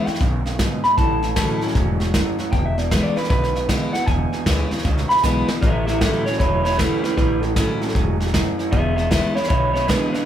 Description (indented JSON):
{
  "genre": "rockabilly",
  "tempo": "155 BPM",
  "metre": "4/4",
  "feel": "swing 64% on 8ths",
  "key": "E mixolydian",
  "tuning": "A4 = 440 Hz",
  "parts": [
    { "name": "electric guitar through a small old amp", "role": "melody", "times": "0.0-10.3 s", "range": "D4 to B5", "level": "-22 LUFS", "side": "equal", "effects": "spring reverb" },
    { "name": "picked steel-string acoustic guitar", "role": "accompaniment", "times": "0.0-10.3 s", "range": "E2 to E4", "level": "-26 LUFS", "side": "left 2 dB", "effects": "none" },
    { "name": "electric guitar through a small old amp", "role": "riff", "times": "0.0-10.3 s", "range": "E2 to F#3", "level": "-26 LUFS", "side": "right 4 dB", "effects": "none" },
    { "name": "upright bass", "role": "bass", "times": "0.1-10.2 s", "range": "E1 to D2", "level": "-25 LUFS", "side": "equal", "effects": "none" },
    { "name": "soft brush drum kit", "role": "drums", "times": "0.1-10.2 s", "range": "hi-hat, kick drum, snare drum", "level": "-22 LUFS", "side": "equal", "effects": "none" }
  ],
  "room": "moderate large studio reverb, RT60 0.9 s",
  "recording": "band playing live in one room",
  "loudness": "-17 LUFS",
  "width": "side -10 dB against mid",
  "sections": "0.0-10.3 A section",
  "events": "clean electric guitar solo 0.0-10.3; drum fill 5.2-5.6",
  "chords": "0.0 E; 1.0 A; 2.5 E; 5.6 A; 8.7 E",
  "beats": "0.21 0.59 | 0.98 1.37 1.75 2.14 | 2.53 2.91 3.30 3.69 | 4.08 4.46 4.85 5.24 | 5.62 6.01 6.40 6.79 | 7.18 7.57 7.95 8.34 | 8.73 9.12 9.51 9.89"
}